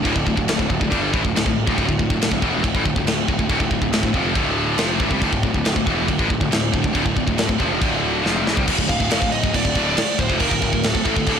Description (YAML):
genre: heavy metal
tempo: 139 BPM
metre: 4/4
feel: straight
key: D minor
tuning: A4 = 440 Hz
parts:
  - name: pipe organ, principal chorus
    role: sustained chords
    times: 0.0-8.6 s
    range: F3 to A4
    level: -34 LUFS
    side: right 1 dB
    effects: none
  - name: distorted electric guitar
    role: riff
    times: 0.0-11.4 s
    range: D2 to G3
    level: -27 LUFS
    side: equal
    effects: overdrive
  - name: scooped high-gain guitar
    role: riff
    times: 0.0-11.4 s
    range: D2 to G3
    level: -23 LUFS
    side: left 1 dB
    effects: distortion
  - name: fuzz picked electric bass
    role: bass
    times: 0.0-11.4 s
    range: D1 to C2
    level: -26 LUFS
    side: equal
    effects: overdrive
  - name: tight metal drum kit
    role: drums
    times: 0.1-11.4 s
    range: crash cymbal, kick drum, snare drum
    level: -21 LUFS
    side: equal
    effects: none
  - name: high-gain lead guitar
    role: melody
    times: 8.9-11.4 s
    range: A4 to F5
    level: -24 LUFS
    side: right 1 dB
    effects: distortion
room: light reverb, studio reverb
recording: blown-out, overdriven recording, overdrive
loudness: -17 LUFS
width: side -7 dB against mid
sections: 0.0-8.7 A section; 8.7-11.4 B section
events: drum fill 8.2-8.7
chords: 0.0 Dm